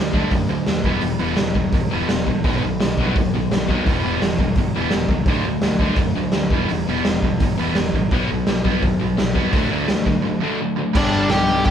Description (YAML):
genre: punk rock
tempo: 169 BPM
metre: 4/4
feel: straight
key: E minor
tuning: A4 = 440 Hz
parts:
  - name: overdriven electric guitar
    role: riff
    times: 0.0-11.7 s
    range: B2 to G4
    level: -24 LUFS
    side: right 7 dB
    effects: none
  - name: sludgy distorted guitar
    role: riff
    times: 0.0-11.7 s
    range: E2 to D4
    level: -24 LUFS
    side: left 7 dB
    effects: overdrive
  - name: picked electric bass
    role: bass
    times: 0.0-11.7 s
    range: E1 to F#2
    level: -27 LUFS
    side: equal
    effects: none
  - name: raw garage drum kit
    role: drums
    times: 0.1-11.7 s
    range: crash cymbal, hi-hat, kick drum, snare drum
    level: -20 LUFS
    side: equal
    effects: none
  - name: crunchy overdriven guitar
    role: riff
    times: 10.9-11.7 s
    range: G3 to G4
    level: -27 LUFS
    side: left 2 dB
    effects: none
  - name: dark smooth lead guitar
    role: melody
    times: 11.0-11.7 s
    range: D4 to G5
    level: -19 LUFS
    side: left 1 dB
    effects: overdrive
room: light reverb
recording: band playing live in one room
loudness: -17 LUFS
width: side -9 dB against mid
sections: 0.0-11.0 A section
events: break 10.2-11.0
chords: 0.0 D; 0.9 Em; 2.4 B; 3.9 Em; 5.3 D; 6.5 Em; 8.1 B; 9.5 D; 11.0 G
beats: 0.32 0.67 | 1.03 1.38 1.74 2.09 | 2.45 2.80 3.16 3.51 | 3.87 4.22 4.57 4.93 | 5.28 5.64 5.99 6.35 | 6.70 7.05 7.41 7.76 | 8.12 8.47 8.83 9.18 | 9.54 9.89 10.25 10.60 | 10.96 11.31 11.66